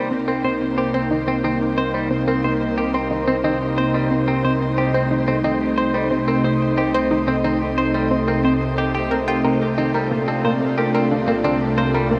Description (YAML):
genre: ambient, sequencer-driven space music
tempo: 90 BPM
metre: 4/4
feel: straight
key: C dorian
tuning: A4 = 440 Hz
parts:
  - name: lush unison pad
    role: sustained chords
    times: 0.0-12.2 s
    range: C3 to F4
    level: -23 LUFS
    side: equal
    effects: chorus
  - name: clean electric guitar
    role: arpeggios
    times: 0.0-12.1 s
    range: C3 to C5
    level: -28 LUFS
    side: equal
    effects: low-pass filter, tape echo
  - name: analog pluck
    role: riff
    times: 0.0-12.2 s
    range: Bb3 to G5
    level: -26 LUFS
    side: equal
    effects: chorus, tape echo
  - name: analog drone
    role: bass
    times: 0.6-12.2 s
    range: C2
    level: -32 LUFS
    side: equal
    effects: chorus
  - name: wind-like tuned noise texture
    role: texture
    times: 0.1-12.2 s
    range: C5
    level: -34 LUFS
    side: equal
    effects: none
room: wet shimmer reverb, RT60 9.1 s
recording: none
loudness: -20 LUFS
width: mono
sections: 0.0-12.2 A section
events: none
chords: 0.0 Cm7; 9.9 Bbmaj7/C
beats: 0.61 1.28 | 1.95 2.61 3.28 3.95 | 4.61 5.28 5.95 6.61 | 7.28 7.95 8.61 9.28 | 9.95 10.61 11.28 11.95